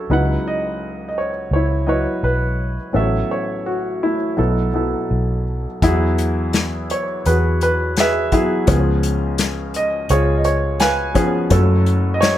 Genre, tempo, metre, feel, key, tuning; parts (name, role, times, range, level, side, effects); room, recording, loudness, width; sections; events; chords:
acoustic folk-pop ballad; 84 BPM; 4/4; straight; E major; A4 = 440 Hz
warm grand piano; melody; 0.0-12.4 s; F#1 to G#5; -18 LUFS; equal; slapback echo
vintage muted fingered electric bass; bass; 0.1-12.4 s; A1 to F#2; -19 LUFS; equal
unplugged drum kit; drums; 5.8-12.4 s; hi-hat, kick drum, snare drum; -20 LUFS; left 2 dB
little or no reverb; close, detailed microphones; -16 LUFS; side -12 dB against mid
0.0-5.8 A section; 5.8-12.4 B section
0.1 C#m11; 2.9 A69; 4.4 B7sus4; 5.8 Eadd9; 8.7 C#7; 11.5 F#m